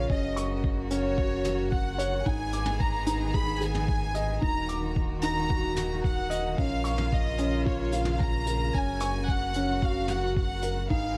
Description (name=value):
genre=piano and strings electronica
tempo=111 BPM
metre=4/4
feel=straight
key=unclear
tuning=A4 = 440 Hz
part: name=warm studio violin section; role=melody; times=0.0-11.2 s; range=Db5 to Cb6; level=-35 LUFS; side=equal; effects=none
part: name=dark string quartet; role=sustained chords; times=0.0-11.2 s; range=Db3 to Ab4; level=-38 LUFS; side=equal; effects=sidechain pumping
part: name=felt-muted upright piano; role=riff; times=0.0-11.2 s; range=Db4 to D6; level=-34 LUFS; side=equal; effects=none
part: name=round analog bass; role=bass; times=0.0-11.2 s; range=Eb1 to Bb1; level=-34 LUFS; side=equal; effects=tube saturation, sidechain pumping
part: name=electronic kick drum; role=drums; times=0.1-11.0 s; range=none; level=-31 LUFS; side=equal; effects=none
part: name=vintage brush drum kit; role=drums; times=0.4-10.7 s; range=hi-hat, toms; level=-42 LUFS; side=equal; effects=none
room=light reverb, studio reverb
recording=none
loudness=-28 LUFS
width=mono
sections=0.0-11.2 A section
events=none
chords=0.1 Gb; 2.3 Abm; 4.4 Ebm; 6.6 Bbm; 8.7 Gb